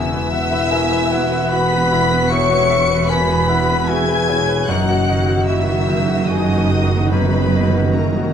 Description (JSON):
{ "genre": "cinematic, emotional film score for orchestra", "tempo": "71-77 BPM", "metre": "3/4", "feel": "rubato", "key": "unclear", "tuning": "A4 = 443 Hz", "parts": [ { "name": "warm symphonic violin section", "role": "melody", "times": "0.0-8.3 s", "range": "A#5 to C#7", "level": "-24 LUFS", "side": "left 2 dB", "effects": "none" }, { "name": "dark clarinet", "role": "second line", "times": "0.0-8.3 s", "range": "C#5 to G#5", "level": "-26 LUFS", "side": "equal", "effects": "none" }, { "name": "dark symphonic violin section", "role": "second line", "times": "0.0-8.3 s", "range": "A#4 to C#6", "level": "-26 LUFS", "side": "left 3 dB", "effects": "none" }, { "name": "mellow hollow silver concert flute", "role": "second line", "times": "0.0-8.3 s", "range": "A#4 to C#6", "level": "-26 LUFS", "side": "equal", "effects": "none" }, { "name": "bright grand piano", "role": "accompaniment", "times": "0.0-8.3 s", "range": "E2 to E5", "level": "-25 LUFS", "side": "left 2 dB", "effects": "none" }, { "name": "rich symphonic viola section", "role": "accompaniment", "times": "0.0-8.3 s", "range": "D#3 to F#4", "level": "-25 LUFS", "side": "right 2 dB", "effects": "none" }, { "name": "mellow French horn section", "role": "sustained chords", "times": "0.0-8.3 s", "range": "A#3 to C#5", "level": "-23 LUFS", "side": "left 4 dB", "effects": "none" }, { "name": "concert harp", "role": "arpeggios", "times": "0.0-8.3 s", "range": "E2 to B4", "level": "-26 LUFS", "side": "left 9 dB", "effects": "none" }, { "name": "dark studio cello section", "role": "bass", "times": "0.0-8.3 s", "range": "E2 to F#2", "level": "-22 LUFS", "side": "right 3 dB", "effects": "none" }, { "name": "warm symphonic double bass section", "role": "bass", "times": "0.0-8.3 s", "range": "E1 to F#1", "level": "-22 LUFS", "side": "right 3 dB", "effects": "none" }, { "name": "timpani", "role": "percussion", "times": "4.7-8.3 s", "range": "D#3", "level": "-27 LUFS", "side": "left 1 dB", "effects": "none" } ], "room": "light reverb", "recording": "close, detailed microphones", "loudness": "-14 LUFS", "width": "side -8 dB against mid", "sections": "0.0-8.3 A section", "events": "timpani fill 4.7-8.3", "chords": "0.0 Esus2; 4.7 D#m/F#" }